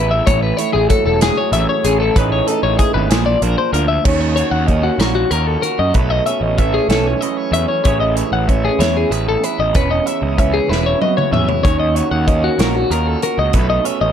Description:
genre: math rock and midwest emo.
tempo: 63 BPM (dotted quarters).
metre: 6/8.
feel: straight.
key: A lydian.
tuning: A4 = 440 Hz.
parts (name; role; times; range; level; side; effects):
electric guitar through a small old amp; accompaniment; 0.0-14.1 s; E2 to A#4; -20 LUFS; right 7 dB; none.
twelve-string electric guitar; arpeggios; 0.0-14.1 s; F#4 to F#5; -18 LUFS; left 5 dB; plate reverb.
fuzz picked electric bass; bass; 0.0-14.1 s; E1 to F#2; -19 LUFS; equal; overdrive.
modern studio drum kit; drums; 0.3-14.0 s; crash cymbal, hi-hat, kick drum, snare drum, toms; -18 LUFS; equal; none.
room: light reverb.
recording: dark, warm production.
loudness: -13 LUFS.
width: side -8 dB against mid.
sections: 0.0-4.1 A section; 4.1-14.1 B section.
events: drum fill 10.7-11.6.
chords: 0.3 F#m7; 2.2 Amaj9#11; 3.1 Bb7; 4.1 D#m7; 6.0 Amaj9; 9.7 Esus2; 11.6 D#m7; 13.5 Aadd9.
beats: | 0.27 1.22 | 2.16 3.11 | 4.06 5.00 | 5.95 6.90 | 7.85 8.80 | 9.75 10.70 | 11.64 12.59 | 13.54.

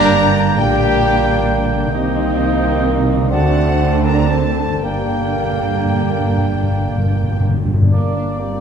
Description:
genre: classical, slow romantic movement for symphony orchestra.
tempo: 38-46 BPM (dotted quarters).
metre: 6/8.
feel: rubato.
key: G minor.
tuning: A4 = 440 Hz.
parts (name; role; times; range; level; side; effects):
rich studio violin section; melody; 0.0-8.6 s; D5 to Bb5; -27 LUFS; left 4 dB; none.
concert flute; second line; 0.0-7.4 s; F#5 to Bb5; -25 LUFS; left 4 dB; none.
mellow clarinet; second line; 0.0-8.6 s; Bb3 to Eb5; -27 LUFS; right 1 dB; none.
rich studio violin section; second line; 0.0-7.4 s; F#5 to Bb5; -31 LUFS; left 2 dB; none.
warm cor anglais; second line; 0.0-8.6 s; D5 to A5; -27 LUFS; left 1 dB; none.
mellow bassoon; accompaniment; 0.0-8.6 s; Bb3 to C4; -26 LUFS; right 3 dB; none.
rich studio viola section; accompaniment; 0.0-8.6 s; A3 to G4; -26 LUFS; right 1 dB; none.
clear French horn section; sustained chords; 0.0-7.4 s; F#4 to Bb4; -24 LUFS; left 9 dB; none.
clear trombone section; sustained chords; 0.0-7.5 s; D3 to C4; -24 LUFS; right 6 dB; none.
concert harp; arpeggios; 0.0-8.6 s; G2 to D5; -27 LUFS; left 6 dB; none.
mellow trumpet; stabs; 0.0-7.4 s; A3 to D4; -25 LUFS; right 2 dB; none.
warm studio cello section; bass; 0.0-8.6 s; G2 to D3; -22 LUFS; right 4 dB; none.
warm studio double bass section; bass; 0.0-8.6 s; G1 to D2; -21 LUFS; right 3 dB; none.
timpani; percussion; 0.0-0.5, 4.8-8.6 s; G2; -18 LUFS; left 1 dB; none.
room: wet recital hall reverb, RT60 1.4 s.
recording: dark, warm production.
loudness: -14 LUFS.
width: side -7 dB against mid.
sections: 0.0-7.9 A section.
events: timpani fill 4.8-7.9.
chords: 0.0 Gm; 1.9 Cm7; 3.3 D7; 4.8 Gm.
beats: 0.58 | 1.93 3.31 | 4.83 6.39 | 7.92.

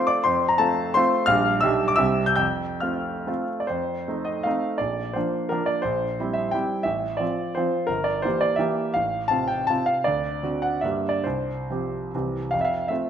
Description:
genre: classical, romantic triple-time dance for piano with dotted rhythms.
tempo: 130-186 BPM.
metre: 3/4.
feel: rubato.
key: F major.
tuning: A4 = 439 Hz.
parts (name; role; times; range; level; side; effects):
clear concert grand piano; solo; 0.0-13.1 s; G1 to G6; -22 LUFS; equal; none.
room: wet recital hall reverb, RT60 1.4 s.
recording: none.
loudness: -22 LUFS.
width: side -8 dB against mid.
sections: 0.0-3.7 A section; 3.7-12.5 B section.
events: none.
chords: 0.0 F; 1.3 Gm/Bb; 1.6 G/B; 2.0 C; 2.4 F; 3.7 F7; 4.8 Bb; 5.8 C7/Bb; 6.9 F/A; 7.9 Edim/G; 9.0 F/A; 10.1 D7; 10.8 Gm; 11.2 Csus4; 12.1 C; 12.5 F.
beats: | 0.23 0.59 0.95 | 1.28 1.63 2.00 | 2.40 2.84 3.28 | 3.69 4.08 4.46 | 4.81 5.16 5.52 | 5.84 6.19 6.54 | 6.87 7.21 7.57 | 7.91 8.25 8.62 | 8.97 9.33 9.71 | 10.06 10.43 10.83 | 11.25 11.70 12.14 | 12.54 12.90.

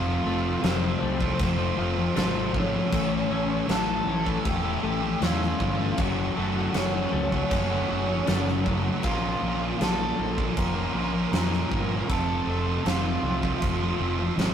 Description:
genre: quiet-loud alternative rock.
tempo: 79 BPM.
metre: 4/4.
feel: straight.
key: unclear.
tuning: A4 = 441 Hz.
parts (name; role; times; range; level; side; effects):
biting lead guitar; melody; 0.0-14.4 s; C4 to Bb5; -31 LUFS; equal; overdrive.
twelve-string electric guitar; arpeggios; 0.0-9.0 s; F2 to C#4; -32 LUFS; left 5 dB; none.
thick fuzz guitar; riff; 0.0-14.5 s; F2 to Bb4; -32 LUFS; left 4 dB; distortion.
thick fuzz guitar; riff; 0.0-14.5 s; F2 to Bb4; -30 LUFS; right 5 dB; distortion.
fuzz fingered electric bass; bass; 0.0-14.5 s; E1 to F2; -30 LUFS; equal; overdrive.
huge arena drum kit; drums; 0.6-14.5 s; crash cymbal, kick drum, snare drum; -30 LUFS; left 1 dB; none.
room: moderate studio reverb, RT60 0.5 s.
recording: rough rehearsal-room recording, tube saturation.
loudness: -23 LUFS.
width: side -8 dB against mid.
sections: 0.0-14.5 A section.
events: none.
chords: 0.0 F; 2.9 A; 6.0 F#m; 9.0 Bbm; 12.1 F.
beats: 0.64 1.40 2.17 | 2.93 3.69 4.46 5.22 | 5.99 6.75 7.51 8.28 | 9.04 9.80 10.57 11.33 | 12.10 12.86 13.62 14.38.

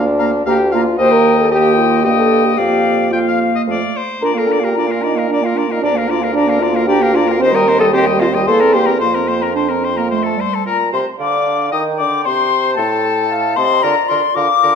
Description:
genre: quick classical-period movement for wind quintet.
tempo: 113 BPM.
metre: 3/4.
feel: rubato.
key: Bb major.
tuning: A4 = 438 Hz.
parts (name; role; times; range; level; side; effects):
bright oboe; second line; 0.0-14.7 s; A4 to G5; -22 LUFS; left 4 dB; none.
clear French horn; accompaniment; 0.0-14.7 s; A3 to C5; -17 LUFS; equal; none.
dark clarinet; accompaniment; 0.0-14.8 s; G3 to G5; -20 LUFS; right 7 dB; none.
mellow bassoon; bass; 0.0-14.8 s; D2 to Eb3; -20 LUFS; right 2 dB; none.
silver concert flute; melody; 0.2-14.8 s; Eb5 to Eb6; -18 LUFS; left 9 dB; none.
room: wet recital hall reverb, RT60 1.7 s.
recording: minimal, uncompressed stereo recording.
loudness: -12 LUFS.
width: side -7 dB against mid.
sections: 0.0-10.7 A section; 10.7-14.8 B section.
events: none.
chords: 0.0 Bb/D; 1.0 Eb; 2.6 Bb/F; 3.7 F; 4.2 Bb; 5.8 Bb/D; 7.4 Cm/Eb; 8.5 C7/E; 9.0 Fsus4; 10.1 F; 10.7 Bb; 12.3 Am7b5; 13.8 Bb/D.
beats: 0.46 | 0.99 1.51 2.04 | 2.58 3.12 3.68 | 4.23 4.77 5.30 | 5.83 6.35 6.87 | 7.40 7.93 8.46 | 9.00 9.55 10.10 | 10.65 11.20 11.73 | 12.26 12.78 13.31 | 13.84 14.36.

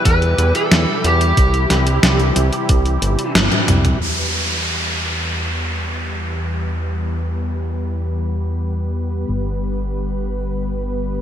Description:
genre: synthwave.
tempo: 91 BPM.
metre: 4/4.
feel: straight.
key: unclear.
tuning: A4 = 440 Hz.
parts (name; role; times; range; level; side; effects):
brassy analog pad; sustained chords; 0.0-11.2 s; B2 to B4; -25 LUFS; left 2 dB; chorus, sidechain pumping.
lead guitar through a small cranked amp; melody; 0.1-3.3 s; G4 to B4; -20 LUFS; right 1 dB; overdrive, vintage 12-bit sampler grit, ping-pong delay.
fat analog bass; bass; 0.1-11.2 s; G1 to E2; -20 LUFS; equal; none.
detuned 8-bit digital drum machine; drums; 0.1-4.0 s; hi-hat, snare drum, toms; -18 LUFS; equal; gated reverb.
electronic kick drum; drums; 0.1-2.8 s; none; -16 LUFS; equal; none.
downlifter; sound effects; 4.0-9.3 s; none; -24 LUFS; equal; none.
room: moderate lush hall reverb, RT60 2.4 s.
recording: bright 1980s-style digital production.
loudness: -16 LUFS.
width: side -9 dB against mid.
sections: 0.0-4.0 A section; 4.0-11.2 B section.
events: band accent 3.4-3.7; drum fill 3.5-4.0; filter sweep on analog synth pad 4.0-11.2.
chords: 0.0 Em; 1.4 C; 4.0 Em; 9.3 G.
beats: 0.06 0.71 | 1.38 2.03 2.69 3.35 | 4.01 4.67 5.33 5.99 | 6.65 7.31 7.97 8.63 | 9.29 9.95 10.61.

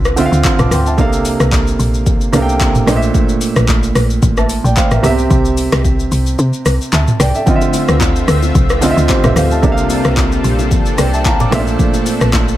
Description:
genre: amapiano.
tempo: 111 BPM.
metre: 4/4.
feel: swing 55% on 16ths.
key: unclear.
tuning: A4 = 438 Hz.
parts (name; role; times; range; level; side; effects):
warm baby grand piano; accompaniment; 0.0-12.6 s; Bb2 to D6; -16 LUFS; right 3 dB; none.
woody log drum bass; bass; 0.0-12.6 s; A1 to C3; -15 LUFS; equal; none.
afro-pop drum kit; drums; 0.0-12.6 s; handclaps, hi-hat, kick drum, rim click, shaker, snare drum, toms; -15 LUFS; equal; overdrive.
lush unison pad; sustained chords; 7.5-12.6 s; C3 to E5; -21 LUFS; left 2 dB; chorus, sidechain pumping.
congas and bongos; percussion; 7.5-12.5 s; none; -23 LUFS; left 6 dB; none.
room: little or no reverb.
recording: none.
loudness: -11 LUFS.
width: side -14 dB against mid.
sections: 0.0-12.6 A section.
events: kick muted 6.4-7.5; grand piano fill 11.0-11.8.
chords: 0.0 Dm9; 1.0 C13sus4; 2.9 Bbmaj9#11; 5.0 C69; 7.5 Dm9; 9.6 C13sus4; 11.5 Bbmaj9#11.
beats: 0.44 | 0.98 1.52 2.06 2.60 | 3.14 3.68 4.22 4.76 | 5.30 5.85 6.39 6.93 | 7.47 8.01 8.55 9.09 | 9.63 10.17 10.71 11.25 | 11.79 12.33.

